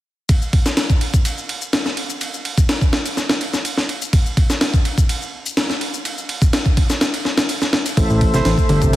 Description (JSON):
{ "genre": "breakbeat, breaks", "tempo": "125 BPM", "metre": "4/4", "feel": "straight", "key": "A minor", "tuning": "A4 = 440 Hz", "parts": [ { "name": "breakbeat sampler-style drum kit", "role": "drums", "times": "0.3-9.0 s", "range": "kick drum, ride cymbal, snare drum", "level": "-16 LUFS", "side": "equal", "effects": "small room reverb" }, { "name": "shaker", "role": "drums", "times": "0.3-9.0 s", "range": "none", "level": "-31 LUFS", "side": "left 7 dB", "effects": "small room reverb" }, { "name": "mellow tonewheel organ", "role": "sustained chords", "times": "8.0-9.0 s", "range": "A3 to E5", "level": "-21 LUFS", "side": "equal", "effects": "overdrive, chorus vibrato, slow rotary speaker, vintage 12-bit sampler grit, sidechain pumping" }, { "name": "fat analog bass", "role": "bass", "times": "8.0-9.0 s", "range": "G1 to A1", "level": "-19 LUFS", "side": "equal", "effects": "none" }, { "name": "overdriven picked electric bass", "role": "riff", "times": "8.1-9.0 s", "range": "A2 to E3", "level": "-18 LUFS", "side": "equal", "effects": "none" }, { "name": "warm horn section", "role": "stabs", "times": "8.3-8.5 s", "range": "A3 to C5", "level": "-24 LUFS", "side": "right 3 dB", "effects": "digital delay" } ], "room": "light reverb, digital ambience", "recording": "heavily compressed radio sound, multiband compression", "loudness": "-16 LUFS", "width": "side -15 dB against mid", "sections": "0.3-9.0 A section", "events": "none", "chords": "0.3 Am" }